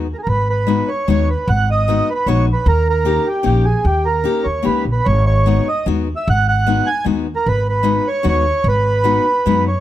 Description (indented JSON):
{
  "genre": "musette waltz",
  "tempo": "150 BPM",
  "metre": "3/4",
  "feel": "rubato",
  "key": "G# minor",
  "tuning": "A4 = 439 Hz",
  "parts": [
    { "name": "picked steel-string acoustic guitar", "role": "accompaniment", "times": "0.0-9.7 s", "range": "G#3 to G4", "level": "-20 LUFS", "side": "left 8 dB", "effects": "none" },
    { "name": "upright bass", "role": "bass", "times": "0.0-9.7 s", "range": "G#1 to F#2", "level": "-17 LUFS", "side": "equal", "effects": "none" },
    { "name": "mellow accordion", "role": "melody", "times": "0.1-9.8 s", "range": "G4 to G#5", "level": "-18 LUFS", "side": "right 2 dB", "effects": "none" }
  ],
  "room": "light reverb",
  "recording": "close, detailed microphones",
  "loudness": "-14 LUFS",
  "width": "side -13 dB against mid",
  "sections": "0.3-9.8 A section",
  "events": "none",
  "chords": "0.3 G#m7; 2.7 D#7; 5.1 G#m7"
}